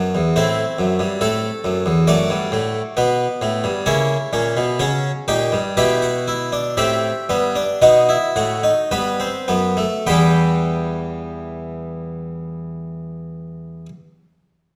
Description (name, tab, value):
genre	classical, baroque-style 4-part fugue for harpsichord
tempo	50-71 BPM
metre	4/4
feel	straight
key	E minor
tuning	A4 = 440 Hz
part	harpsichord	solo	0.0-13.9 s	E2 to G5	-19 LUFS	equal	none
room	wet recital hall reverb, RT60 1.4 s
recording	none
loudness	-19 LUFS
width	mono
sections	0.0-10.1 A section; 10.1-14.8 B section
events	slowing down 0.4-10.1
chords	0.4 Am; 2.1 Gmaj9/F#; 3.9 A#dim7; 5.8 Em/B; 7.8 B7; 10.1 Em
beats	0.37 1.22 | 2.09 2.98 3.88 4.81 | 5.77 6.77 7.81 8.90 | 10.05 11.24 12.43 13.63